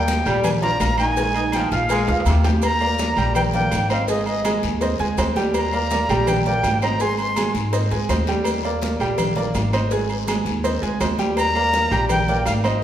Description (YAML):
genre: latin, salsa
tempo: 165 BPM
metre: 4/4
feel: straight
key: Eb major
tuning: A4 = 440 Hz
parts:
  - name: bright reedy jazz flute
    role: melody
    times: 0.0-7.5, 11.4-12.8 s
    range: Eb5 to C6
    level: -22 LUFS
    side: equal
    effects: none
  - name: bright trombone section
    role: second line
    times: 0.0-2.5 s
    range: C3 to Ab3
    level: -27 LUFS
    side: left 2 dB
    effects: none
  - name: warm upright piano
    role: accompaniment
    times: 0.0-12.8 s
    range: G3 to Ab6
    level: -24 LUFS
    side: right 3 dB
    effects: none
  - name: upright bass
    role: bass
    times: 0.0-12.8 s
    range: Ab1 to Ab2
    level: -24 LUFS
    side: equal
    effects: none
  - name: congas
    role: percussion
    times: 0.1-12.8 s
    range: none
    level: -28 LUFS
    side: equal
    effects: none
  - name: cowbell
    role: percussion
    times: 0.1-12.6 s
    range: none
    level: -31 LUFS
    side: left 6 dB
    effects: none
  - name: guiro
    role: percussion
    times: 0.1-12.8 s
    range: none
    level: -36 LUFS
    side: left 8 dB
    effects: none
  - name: maracas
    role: percussion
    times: 0.1-12.8 s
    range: none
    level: -38 LUFS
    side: right 6 dB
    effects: none
  - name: timbales and agogo bells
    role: percussion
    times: 0.1-12.8 s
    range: none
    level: -28 LUFS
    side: right 2 dB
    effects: none
room: wet recital hall reverb, RT60 1.7 s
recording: recorded in a church or concert hall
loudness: -18 LUFS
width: side -10 dB against mid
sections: 0.0-2.6 A section; 2.6-12.8 B section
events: drum fill 2.1-2.6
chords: 0.0 Ebmaj7; 1.2 Bb7sus4; 1.9 Bb7; 2.6 Ebmaj7; 4.1 Abmaj7; 5.5 Ebmaj7; 7.0 Abmaj7; 8.5 Ebmaj7; 9.9 Abmaj7; 11.4 Ebmaj7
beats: 0.08 0.45 0.81 | 1.18 1.54 1.90 2.27 | 2.63 3.00 3.36 3.72 | 4.09 4.45 4.82 5.18 | 5.54 5.91 6.27 6.63 | 7.00 7.36 7.73 8.09 | 8.46 8.82 9.18 9.55 | 9.91 10.28 10.64 11.01 | 11.37 11.73 12.10 12.46 | 12.82